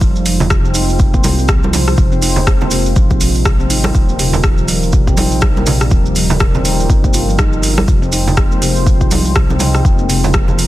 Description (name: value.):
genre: afro house.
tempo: 122 BPM.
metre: 4/4.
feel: swing 59% on 16ths.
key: F minor.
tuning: A4 = 440 Hz.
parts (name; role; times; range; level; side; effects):
dark analog pad; sustained chords; 0.0-10.7 s; G3 to C5; -22 LUFS; right 1 dB; chorus, sidechain pumping.
handpan; arpeggios; 0.0-10.7 s; C3 to F4; -19 LUFS; equal; sidechain pumping, digital delay.
dark detuned saw bass; bass; 0.0-10.7 s; Eb1 to C2; -18 LUFS; equal; tube saturation, sidechain pumping.
electronic kick drum; drums; 0.0-10.5 s; none; -13 LUFS; equal; overdrive, studio reverb.
maracas; percussion; 0.0-10.7 s; none; -25 LUFS; right 4 dB; none.
deep house drum kit; drums; 0.3-10.7 s; hi-hat, rim click; -20 LUFS; equal; overdrive, studio reverb.
congas; percussion; 0.4-10.6 s; none; -20 LUFS; right 2 dB; none.
room: little or no reverb.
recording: dense, heavily limited modern master.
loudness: -10 LUFS.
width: side -15 dB against mid.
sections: 0.0-10.7 A section.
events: none.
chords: 0.0 Fm7; 3.9 Ebadd9; 7.9 Fm7.